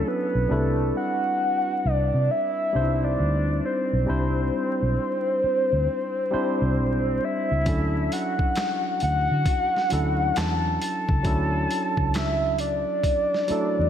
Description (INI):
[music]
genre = R&B, neo-soul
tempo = 67 BPM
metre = 4/4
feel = swing 63% on 16ths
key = D major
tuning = A4 = 439 Hz
[part]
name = soft octave-layered synth lead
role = melody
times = 0.0-13.9 s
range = A4 to A5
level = -25 LUFS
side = left 1 dB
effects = chorus, phaser, slapback echo
[part]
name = barky tine electric piano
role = accompaniment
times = 0.0-13.9 s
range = F#3 to C5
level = -28 LUFS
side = right 1 dB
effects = overdrive, auto-pan, slapback echo
[part]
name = vintage muted fingered electric bass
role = bass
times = 0.0-13.9 s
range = B1 to D3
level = -25 LUFS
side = equal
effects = none
[part]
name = boom bap sampler-style drum kit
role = drums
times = 7.7-13.7 s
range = handclaps, hi-hat, kick drum, snare drum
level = -28 LUFS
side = equal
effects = none
[sound]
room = moderate concert hall reverb, RT60 2.1 s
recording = big arena sound, vinyl crackle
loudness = -21 LUFS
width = side -9 dB against mid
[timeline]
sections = 0.0-13.9 A section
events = none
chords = 0.5 Cmaj9; 7.7 Dmaj9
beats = | 0.50 1.39 2.29 3.18 | 4.08 4.97 5.87 6.77 | 7.66 8.56 9.45 10.35 | 11.24 12.14 13.04